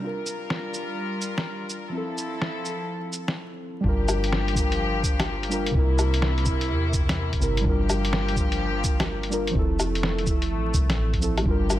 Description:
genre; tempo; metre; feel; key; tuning
future garage; 126 BPM; 4/4; swing 65% on 16ths; G dorian; A4 = 440 Hz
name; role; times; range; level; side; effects
muted felt-like synth keys; accompaniment; 0.0-11.8 s; C3 to Bb4; -29 LUFS; equal; chorus, vintage 12-bit sampler grit, sidechain pumping, low-pass filter, tape echo
warm studio string section; sustained chords; 0.0-11.8 s; C3 to Bb4; -32 LUFS; left 4 dB; sidechain pumping
lo-fi sampler-style drum kit; drums; 0.3-11.8 s; cabasa, hi-hat, snare drum, woodblock; -28 LUFS; equal; none
soft 808-style bass; bass; 3.8-11.8 s; F1 to E2; -26 LUFS; equal; tube saturation, sidechain pumping
electronic kick drum; drums; 3.8-11.6 s; none; -26 LUFS; equal; none
room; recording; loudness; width
light reverb; vinyl crackle; -22 LUFS; side -14 dB against mid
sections
0.0-3.8 A section; 3.8-11.8 B section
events
filter sweep on synth keys 0.0-3.8; break 3.4-3.8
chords
0.0 Gm7; 1.9 Fmaj7; 3.8 Gm7; 5.7 C7; 7.6 Gm7; 9.6 Fmaj7

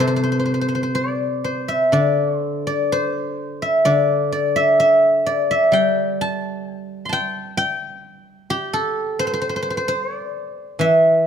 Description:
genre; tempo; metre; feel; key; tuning
chinese traditional, Chinese solo plucked strings; 61-66 BPM; 4/4; rubato; G zhi mode; A4 = 436 Hz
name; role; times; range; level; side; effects
guzheng; solo; 0.0-11.3 s; C3 to C6; -17 LUFS; equal; none
room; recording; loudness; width
moderate recital hall reverb, RT60 1.7 s; close, detailed microphones; -17 LUFS; side -8 dB against mid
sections
0.0-11.3 A section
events
none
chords
none

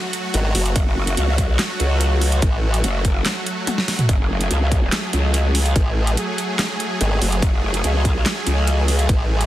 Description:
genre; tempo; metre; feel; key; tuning
heavy wobble dubstep; 144 BPM; 4/4; half-time; F# minor; A4 = 438 Hz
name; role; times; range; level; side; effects
supersaw chords; sustained chords; 0.0-9.5 s; F#3 to G#4; -25 LUFS; right 1 dB; sidechain pumping
dubstep drum kit; drums; 0.1-9.5 s; handclaps, hi-hat, snare drum, toms; -23 LUFS; equal; studio ambience
formant-sweep wobble bass; bass; 0.3-2.8, 5.8-9.5 s; F#1 to A1; -19 LUFS; equal; chorus, overdrive
growl bass; bass; 0.8-9.1 s; F#1 to C#2; -18 LUFS; equal; chorus, overdrive
electronic kick drum; drums; 0.8-9.2 s; none; -20 LUFS; equal; overdrive, studio ambience
room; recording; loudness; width
little or no reverb; dense, heavily limited modern master; -17 LUFS; side -14 dB against mid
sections
0.0-9.5 A section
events
drum fill 3.7-4.1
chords
0.0 F#madd9

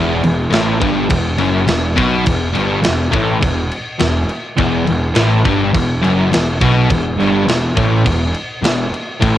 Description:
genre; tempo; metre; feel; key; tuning
heavy metal; 103 BPM; 4/4; straight; unclear; A4 = 440 Hz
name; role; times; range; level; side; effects
distorted electric guitar; riff; 0.0-9.4 s; E2 to B2; -21 LUFS; right 1 dB; distortion, cassette tape
sludgy distorted guitar; riff; 0.0-9.4 s; E2 to B2; -18 LUFS; left 5 dB; overdrive, cassette tape
sludgy distorted guitar; riff; 0.0-9.4 s; E2 to B2; -21 LUFS; right 5 dB; overdrive, cassette tape
fuzz picked electric bass; bass; 0.0-9.4 s; E1 to B1; -19 LUFS; equal; overdrive
tight metal drum kit; drums; 0.2-9.4 s; crash cymbal, kick drum, snare drum; -19 LUFS; equal; none
room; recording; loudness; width
light reverb; home recording on cassette; -13 LUFS; side -12 dB against mid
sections
0.0-9.4 A section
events
none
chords
0.0 E5

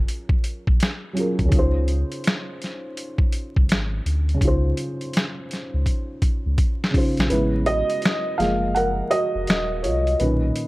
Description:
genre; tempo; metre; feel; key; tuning
lo-fi hip hop; 83 BPM; 4/4; swing 64% on 16ths; Db major; A4 = 440 Hz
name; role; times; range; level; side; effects
felt-muted upright piano; accompaniment; 0.0-10.7 s; Bb2 to Gb5; -24 LUFS; right 1 dB; cassette tape, low-pass filter
warm sub bass; bass; 0.0-10.5 s; Eb1 to D2; -23 LUFS; equal; none
boom bap sampler-style drum kit; drums; 0.1-10.7 s; hi-hat, kick drum, snare drum; -21 LUFS; equal; none
room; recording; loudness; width
little or no reverb; vinyl crackle; -19 LUFS; side -19 dB against mid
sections
0.0-7.3 A section; 7.3-10.7 B section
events
drum fill 5.9-7.3; kick muted 7.3-10.7; felt piano solo 7.3-10.7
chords
0.0 Gbmaj9; 1.5 Dbmaj9; 7.3 Amaj9; 8.4 Gbmaj9

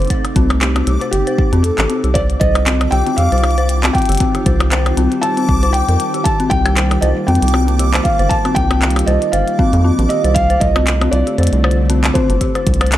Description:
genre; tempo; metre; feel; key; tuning
IDM; 117 BPM; 4/4; swing 56% on 16ths; unclear; A4 = 436 Hz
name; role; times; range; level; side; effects
felt-muted upright piano; melody; 0.0-13.0 s; G4 to A5; -20 LUFS; equal; vintage 12-bit sampler grit, digital delay
soft string machine; sustained chords; 0.0-13.0 s; C3 to F4; -22 LUFS; right 1 dB; ensemble chorus
rubbery square bass; bass; 0.0-13.0 s; G1 to F2; -15 LUFS; equal; none
glitchy drum kit; drums; 0.0-13.0 s; handclaps, hi-hat, percussion blips; -21 LUFS; left 1 dB; none
backwards swelling texture; texture; 0.0-13.0 s; D6; -28 LUFS; equal; built-in reverb
dark detuned synth bell; arpeggios; 0.1-12.9 s; C4 to C5; -21 LUFS; left 3 dB; chorus, digital delay
electronic kick drum; drums; 0.1-12.8 s; none; -17 LUFS; equal; none
room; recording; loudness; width
light reverb, digital ambience; none; -12 LUFS; side -13 dB against mid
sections
0.0-13.0 A section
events
none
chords
0.0 Cm69; 2.2 Ebmaj9; 10.4 Dm7

